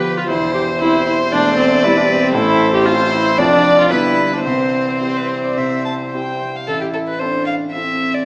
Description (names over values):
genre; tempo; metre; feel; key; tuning
quick classical-period movement for piano quintet; 107-118 BPM; 4/4; rubato; C major; A4 = 440 Hz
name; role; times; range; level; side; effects
warm violin; melody; 0.0-8.2 s; G4 to F5; -19 LUFS; left 1 dB; none
warm cello; second line; 0.0-8.2 s; E3 to E4; -24 LUFS; right 1 dB; none
warm violin; second line; 0.0-7.6 s; A4 to A5; -20 LUFS; equal; none
dark viola; accompaniment; 0.0-7.6 s; C4 to G4; -17 LUFS; equal; none
warm concert grand piano; accompaniment; 0.0-8.2 s; E1 to A4; -20 LUFS; equal; none
room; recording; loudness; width
wet recital hall reverb, RT60 1.8 s; small speaker sound; -13 LUFS; side -27 dB against mid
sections
0.0-6.7 A section; 6.7-8.2 B section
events
none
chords
0.3 C/E; 2.3 Am; 3.4 Dm/F; 3.9 G; 4.5 C; 6.7 Am